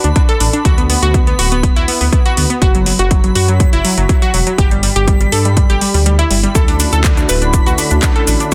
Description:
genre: progressive house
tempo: 122 BPM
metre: 4/4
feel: straight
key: D major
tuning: A4 = 444 Hz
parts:
  - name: analog pluck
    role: arpeggios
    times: 0.0-8.5 s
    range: F#3 to B4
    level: -19 LUFS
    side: equal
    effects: chorus, sidechain pumping, digital delay
  - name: dark detuned saw bass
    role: bass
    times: 0.0-8.5 s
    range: D1 to G2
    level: -18 LUFS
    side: equal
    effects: sidechain pumping
  - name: house drum kit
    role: drums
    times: 0.0-8.5 s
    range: handclaps, hi-hat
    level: -21 LUFS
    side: equal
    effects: none
  - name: backwards swelling texture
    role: texture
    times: 0.0-8.5 s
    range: B5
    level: -29 LUFS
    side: equal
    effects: built-in reverb, sidechain pumping
  - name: electronic kick drum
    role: drums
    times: 0.2-8.5 s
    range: none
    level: -15 LUFS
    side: equal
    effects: overdrive
  - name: maracas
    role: percussion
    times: 6.5-8.5 s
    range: none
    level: -27 LUFS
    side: equal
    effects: none
  - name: warm analog pad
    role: sustained chords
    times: 6.6-8.5 s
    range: D3 to F#4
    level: -24 LUFS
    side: equal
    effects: chorus, sidechain pumping
  - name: dusty soul sampler-style drum kit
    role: drums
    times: 6.6-8.5 s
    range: hi-hat, shaker, snare drum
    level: -28 LUFS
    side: equal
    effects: none
room: light reverb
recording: dense, heavily limited modern master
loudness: -13 LUFS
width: mono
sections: 0.0-8.5 A section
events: kick drops out 6.1-6.6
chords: 0.0 D5; 0.7 Bm/D; 2.6 Esus2 (rootless); 4.6 G; 6.6 Dmaj7

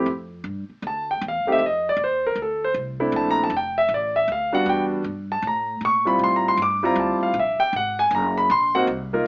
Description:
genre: jazz, small-group swing and bop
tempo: 157 BPM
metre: 4/4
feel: swing 64% on 8ths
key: F major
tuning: A4 = 440 Hz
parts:
  - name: warm concert grand piano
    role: accompaniment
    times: 0.0-9.3 s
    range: G3 to D6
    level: -19 LUFS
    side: equal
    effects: none
  - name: upright bass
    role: bass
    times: 0.0-9.2 s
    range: F1 to Bb2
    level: -32 LUFS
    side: equal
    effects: none
room: moderate studio reverb, RT60 0.5 s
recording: AM radio sound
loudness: -19 LUFS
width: side -26 dB against mid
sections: 0.1-9.3 A section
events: none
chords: 0.1 Fmaj9; 1.6 F7; 3.1 Bbmaj9#11; 4.7 Em7; 5.4 A5; 6.2 Dm11; 7.7 Ab9

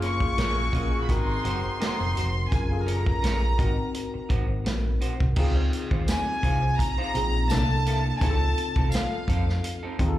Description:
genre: lush 1970s-style soul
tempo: 84 BPM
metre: 4/4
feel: swing 54% on 16ths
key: Db major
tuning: A4 = 441 Hz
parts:
  - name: tine electric piano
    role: accompaniment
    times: 0.0-10.2 s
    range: Bb3 to Bb4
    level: -32 LUFS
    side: left 3 dB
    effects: overdrive, analog chorus, slapback echo
  - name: electric guitar through a small old amp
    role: riff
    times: 0.0-10.0 s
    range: Bb3 to Eb5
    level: -38 LUFS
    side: right 3 dB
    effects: slapback echo
  - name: warm horn section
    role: stabs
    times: 0.0-2.3 s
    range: C3 to Gb4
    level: -34 LUFS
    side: equal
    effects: slapback echo
  - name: hollow-body short-scale fingered electric bass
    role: bass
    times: 0.0-10.2 s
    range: F1 to F2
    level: -25 LUFS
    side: equal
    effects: none
  - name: vintage drum kit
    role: drums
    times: 0.0-10.2 s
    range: crash cymbal, hi-hat, kick drum, snare drum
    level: -28 LUFS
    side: equal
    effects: none
  - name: rich studio violin section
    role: melody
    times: 0.1-9.9 s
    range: F5 to Db6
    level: -30 LUFS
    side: equal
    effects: slapback echo, tape echo
  - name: tambourine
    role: percussion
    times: 6.1-9.1 s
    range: none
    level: -42 LUFS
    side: right 3 dB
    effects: none
room: little or no reverb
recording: live gig heard through the venue's PA, club reverb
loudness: -23 LUFS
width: side -14 dB against mid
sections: 0.0-5.4 A section; 5.4-10.2 B section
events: none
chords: 0.0 Gbmaj7; 1.1 Ab7; 2.5 Gbmaj7; 3.6 Ab7; 5.4 Dbmaj9; 7.5 C13; 8.2 F7

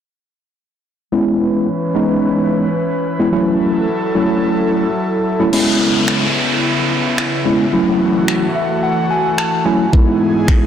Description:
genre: dance-pop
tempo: 109 BPM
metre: 4/4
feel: straight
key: C# minor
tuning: A4 = 444 Hz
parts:
  - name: mellow tine electric piano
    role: accompaniment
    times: 1.1-10.7 s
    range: F#3 to A5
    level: -15 LUFS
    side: equal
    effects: medium stereo tremolo, low-pass filter
  - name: airy breathy pad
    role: sustained chords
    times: 1.1-10.7 s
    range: G#2 to B4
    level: -19 LUFS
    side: left 1 dB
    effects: chorus, sidechain pumping, low-pass filter
  - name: pop drum kit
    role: drums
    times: 5.5-10.6 s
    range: crash cymbal, finger snaps, kick drum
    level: -17 LUFS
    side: equal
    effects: soft clipping on snare
  - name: downlifter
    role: sound effects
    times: 5.5-9.9 s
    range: none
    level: -21 LUFS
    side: right 1 dB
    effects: none
room: moderate plate reverb, RT60 2.7 s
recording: blown-out, overdriven recording, overdrive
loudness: -13 LUFS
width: side -9 dB against mid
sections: 1.1-5.5 A section; 5.5-10.7 B section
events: filter sweep 1.1-5.5; tine electric piano fill 8.3-9.9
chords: 1.1 C#m7; 3.3 F#m7; 5.5 C#m7; 7.7 F#m7; 9.9 Emaj7/G#

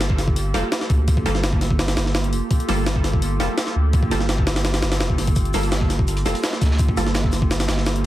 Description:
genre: drum and bass, jungle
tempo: 168 BPM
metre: 4/4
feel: straight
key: G minor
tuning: A4 = 436 Hz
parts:
  - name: warbly tape-like pad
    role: sustained chords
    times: 0.0-8.1 s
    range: Bb3 to A4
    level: -28 LUFS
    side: right 1 dB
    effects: chorus, built-in reverb
  - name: orchestra-hit-like synth stab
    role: stabs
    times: 0.0-7.0 s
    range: G3 to A4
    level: -27 LUFS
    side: right 2 dB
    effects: built-in reverb, dub echo
  - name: saturated sub bass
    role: bass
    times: 0.0-8.1 s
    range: F1 to D2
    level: -22 LUFS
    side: equal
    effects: tube saturation
  - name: breakbeat sampler-style drum kit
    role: drums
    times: 0.0-8.0 s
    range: hi-hat, kick drum, snare drum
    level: -21 LUFS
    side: equal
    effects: none
  - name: crunchy breakbeat drum kit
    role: drums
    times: 5.4-8.0 s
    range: hi-hat, shaker, snare drum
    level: -33 LUFS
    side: right 2 dB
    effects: high-pass filter on hats, high-pass filter on snare, high-pass filter on perc, high-pass filter on room
room: small room ambience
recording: dense, heavily limited modern master, vinyl crackle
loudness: -18 LUFS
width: side -14 dB against mid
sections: 0.0-8.1 A section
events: none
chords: 0.0 Gm9

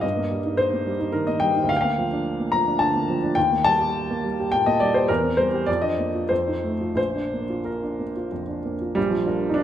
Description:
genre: classical, romantic character piece for solo piano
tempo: 86-111 BPM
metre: 3/4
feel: rubato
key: Bb major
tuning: A4 = 440 Hz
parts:
  - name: warm upright piano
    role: solo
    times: 0.0-9.6 s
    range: Bb1 to Bb5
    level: -20 LUFS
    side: equal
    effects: none
room: wet recital hall reverb, RT60 1.6 s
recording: none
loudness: -20 LUFS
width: side -10 dB against mid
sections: 0.0-9.0 A section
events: none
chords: 0.0 Eb/G; 1.7 Bb/D; 3.4 Eb; 5.1 C7/E; 5.7 Bb/F; 6.3 F7; 7.0 Bb

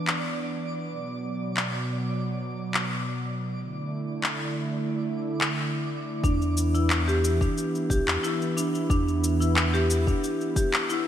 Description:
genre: organic downtempo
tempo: 90 BPM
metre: 4/4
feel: straight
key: E minor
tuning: A4 = 440 Hz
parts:
  - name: warm analog pad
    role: sustained chords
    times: 0.0-11.1 s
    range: B2 to E4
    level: -30 LUFS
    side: right 1 dB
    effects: chorus, sidechain pumping
  - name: twinkling granular texture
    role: texture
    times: 0.0-6.3 s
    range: D5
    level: -39 LUFS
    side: right 2 dB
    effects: built-in reverb
  - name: electronic handclaps and cabasa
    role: drums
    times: 0.1-11.0 s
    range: none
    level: -29 LUFS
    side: left 2 dB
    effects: gated reverb
  - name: marimba with medium hard mallets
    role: arpeggios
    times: 6.2-11.1 s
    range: D4 to G4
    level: -27 LUFS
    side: equal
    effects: ping-pong delay
  - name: warm sub bass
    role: bass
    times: 6.2-10.1 s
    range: B1 to E2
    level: -25 LUFS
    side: left 1 dB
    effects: sidechain pumping
  - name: electronic kick drum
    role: drums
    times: 6.2-10.7 s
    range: none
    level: -26 LUFS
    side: left 1 dB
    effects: none
room: moderate lush hall reverb, RT60 2.5 s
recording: bright 1980s-style digital production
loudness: -24 LUFS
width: side -10 dB against mid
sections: 0.0-6.2 A section; 6.2-11.1 B section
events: none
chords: 0.0 E5; 0.9 Bm; 3.6 Dsus2; 6.2 Em7

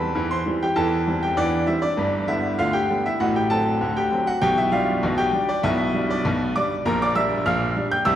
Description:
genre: ragtime piano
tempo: 98 BPM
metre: 2/4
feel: straight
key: unclear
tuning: A4 = 441 Hz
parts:
  - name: bright grand piano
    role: solo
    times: 0.0-8.2 s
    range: G1 to G6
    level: -19 LUFS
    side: equal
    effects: none
room: wet concert hall reverb, RT60 1.9 s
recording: recorded in a church or concert hall, vinyl crackle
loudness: -19 LUFS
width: side -11 dB against mid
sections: 0.0-8.2 A section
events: none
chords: 0.0 C/E; 2.0 G; 3.2 D7/A; 4.4 G/B; 6.9 Gm/Bb

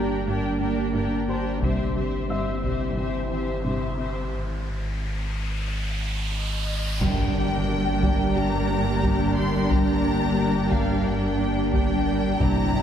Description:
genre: cinematic, hybrid orchestral and electronic film score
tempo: 89 BPM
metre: 4/4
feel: straight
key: G phrygian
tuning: A4 = 436 Hz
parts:
  - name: warm symphonic violin section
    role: second line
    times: 0.0-12.8 s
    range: G4 to G5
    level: -33 LUFS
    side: left 2 dB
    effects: none
  - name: rich symphonic viola section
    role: accompaniment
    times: 0.0-12.8 s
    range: C4 to G4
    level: -31 LUFS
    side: right 1 dB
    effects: none
  - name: ethereal airy pad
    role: sustained chords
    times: 0.0-12.8 s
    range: Bb3 to D5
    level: -30 LUFS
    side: right 1 dB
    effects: ensemble chorus, built-in reverb
  - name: resonant blip pluck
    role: arpeggios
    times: 0.0-12.8 s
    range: C3 to G4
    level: -34 LUFS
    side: left 1 dB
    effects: none
  - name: rich symphonic cello section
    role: bass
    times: 0.0-12.8 s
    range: G2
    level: -29 LUFS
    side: right 1 dB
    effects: none
  - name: warm sub bass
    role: bass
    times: 0.0-12.8 s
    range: G1 to Ab1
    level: -30 LUFS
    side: equal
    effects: none
  - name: warm concert grand piano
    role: texture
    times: 0.0-12.4 s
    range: G4 to E6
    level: -39 LUFS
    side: equal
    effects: none
  - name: taiko ensemble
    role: drums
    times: 1.6-2.9, 7.0-12.8 s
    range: none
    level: -28 LUFS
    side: equal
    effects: none
  - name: riser and impact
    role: sound effects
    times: 3.2-9.7 s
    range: none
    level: -33 LUFS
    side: equal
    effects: none
  - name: clear studio violin section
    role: melody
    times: 6.3-12.8 s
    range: Eb5 to C6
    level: -31 LUFS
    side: left 3 dB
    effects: none
  - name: mellow French horn section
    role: sustained chords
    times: 7.0-12.8 s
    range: Bb3 to E4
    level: -32 LUFS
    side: right 2 dB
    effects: none
  - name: warm symphonic double bass section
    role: bass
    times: 7.0-12.8 s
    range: G1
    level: -30 LUFS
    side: right 1 dB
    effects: none
room: wet concert hall reverb, RT60 2.2 s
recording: heard from further back in the room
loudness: -22 LUFS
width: side -9 dB against mid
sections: 0.0-7.0 A section; 7.0-12.8 B section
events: build-up 0.0-7.0; riser 3.2-7.0; break 4.3-7.0; impact 7.0-9.7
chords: 0.0 Gm; 1.6 C/G; 4.3 Ab5; 7.0 Gm

